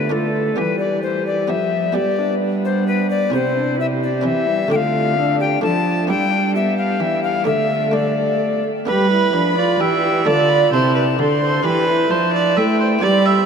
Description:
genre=classical, renaissance-style consort dance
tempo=130 BPM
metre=3/4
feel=straight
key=D dorian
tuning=A4 = 438 Hz
part: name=alto recorder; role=melody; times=0.0-13.5 s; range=A4 to C6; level=-21 LUFS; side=left 5 dB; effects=none
part: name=warm viola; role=second line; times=0.0-13.5 s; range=D4 to E5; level=-21 LUFS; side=right 4 dB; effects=none
part: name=buff-stop harpsichord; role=accompaniment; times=0.0-13.5 s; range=C3 to G4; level=-26 LUFS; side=right 1 dB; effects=none
part: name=clear trombone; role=accompaniment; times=0.0-13.5 s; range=G3 to G4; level=-23 LUFS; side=left 2 dB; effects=none
part: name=dark cello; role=bass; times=0.0-13.5 s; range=C3 to A3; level=-22 LUFS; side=right 2 dB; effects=none
room=wet huge ambient reverb, RT60 7.5 s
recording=in a vast, echoing space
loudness=-15 LUFS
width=side -6 dB against mid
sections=0.0-8.9 A section; 8.9-13.5 A section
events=none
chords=0.0 Dm; 0.6 Em; 2.0 G; 3.3 C; 4.7 Dm; 6.1 G; 7.5 D5; 8.9 G; 10.3 Dm; 11.6 Em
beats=0.12 | 0.58 1.04 1.50 | 1.96 2.42 2.88 | 3.34 3.79 4.25 | 4.71 5.17 5.63 | 6.08 6.54 7.01 | 7.47 7.94 8.41 | 8.88 9.34 9.80 | 10.26 10.72 11.19 | 11.65 12.11 12.57 | 13.03

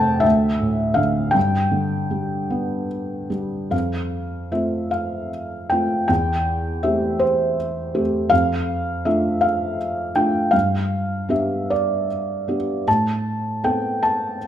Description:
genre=classical, lyrical solo piano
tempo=49-56 BPM (dotted quarters)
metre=6/8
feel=rubato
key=F lydian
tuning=A4 = 438 Hz
part: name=felt-muted upright piano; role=solo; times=0.0-14.5 s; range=D2 to A5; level=-19 LUFS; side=equal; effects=none
room=moderate recital hall reverb, RT60 1.4 s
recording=minimal, uncompressed stereo recording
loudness=-19 LUFS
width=side -10 dB against mid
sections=0.0-3.7 A section; 3.7-14.5 B section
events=none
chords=0.3 Dsus2; 1.4 G; 3.7 F; 6.1 Am7/E; 8.3 Dm/F; 10.5 G; 12.9 Amadd9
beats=0.25 | 1.36 2.52 | 3.73 4.94 | 6.10 7.22 | 8.32 9.43 | 10.54 11.70 | 12.88 14.02

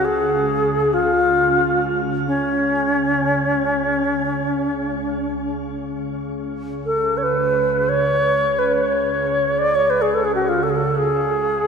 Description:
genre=world meditative, free-time meditation music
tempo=free time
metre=none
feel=none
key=C# major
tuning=A4 = 445 Hz
part: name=bright reedy alto flute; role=melody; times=0.0-11.7 s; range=C#4 to D5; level=-18 LUFS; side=equal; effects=shimmer reverb, analog delay
part: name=organ-like drone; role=drone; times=0.0-11.7 s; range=C#2 to C#3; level=-25 LUFS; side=right 1 dB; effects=ensemble chorus, built-in reverb
room=wet lush hall reverb, RT60 2.5 s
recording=dreamy mix soaked in reverb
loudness=-17 LUFS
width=side -6 dB against mid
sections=0.0-6.0 A section; 6.0-11.7 A section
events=none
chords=none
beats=free time

